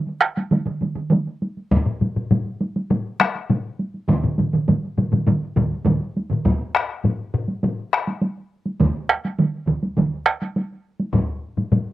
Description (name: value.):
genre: japanese traditional, taiko drum ensemble.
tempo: 102 BPM.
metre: 4/4.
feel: straight.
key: none.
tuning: none.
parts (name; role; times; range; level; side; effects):
solo taiko drums; percussion; 0.1-11.9 s; none; -23 LUFS; right 1 dB; none.
taiko ensemble; percussion; 0.2-10.4 s; none; -21 LUFS; right 3 dB; none.
taiko ensemble; percussion; 1.7-11.9 s; none; -22 LUFS; left 3 dB; none.
taiko ensemble; percussion; 1.7-11.3 s; none; -25 LUFS; equal; none.
room: light reverb.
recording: recorded outdoors, with no room sound.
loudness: -19 LUFS.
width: side -15 dB against mid.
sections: 0.0-6.5 A section; 6.5-11.9 B section.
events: speeding up 0.0-11.9.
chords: none.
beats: 0.51 1.11 | 1.71 2.30 2.90 3.49 | 4.09 4.68 5.27 5.86 | 6.45 7.04 7.63 8.22 | 8.80 9.39 9.97 10.55 | 11.14 11.72.